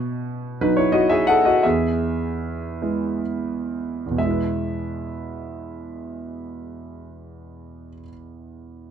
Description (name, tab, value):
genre	classical, lyrical solo piano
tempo	41-61 BPM (dotted quarters)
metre	6/8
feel	rubato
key	E major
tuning	A4 = 440 Hz
part	warm concert grand piano	solo	0.0-8.9 s	E2 to F#5	-22 LUFS	equal	none
room	light reverb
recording	dark, warm production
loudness	-20 LUFS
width	side -8 dB against mid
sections	0.0-4.2 A section; 4.2-8.9 B section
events	slowing down 0.0-4.2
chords	0.0 B; 1.6 E